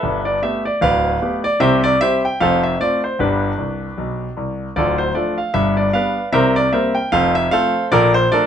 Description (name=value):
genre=jazz, stride piano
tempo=152 BPM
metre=4/4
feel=swing 59% on 8ths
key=F major from 4.8 s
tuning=A4 = 440 Hz
part: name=clear concert grand piano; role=solo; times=0.0-8.5 s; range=D1 to G5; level=-15 LUFS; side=equal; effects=none
room=moderate club reverb, RT60 0.7 s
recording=none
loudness=-15 LUFS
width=side -8 dB against mid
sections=0.0-8.5 A section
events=grand piano fill 3.6-4.8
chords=0.0 G9; 1.6 C5; 2.4 F; 3.2 G; 4.8 Dm; 5.5 G7; 6.3 C5; 7.1 F; 7.9 Bbmaj7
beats=| 0.03 0.42 0.82 1.21 | 1.60 2.00 2.39 2.79 | 3.18 3.57 3.97 4.36 | 4.75 5.15 5.54 5.94 | 6.33 6.73 7.12 7.52 | 7.91 8.31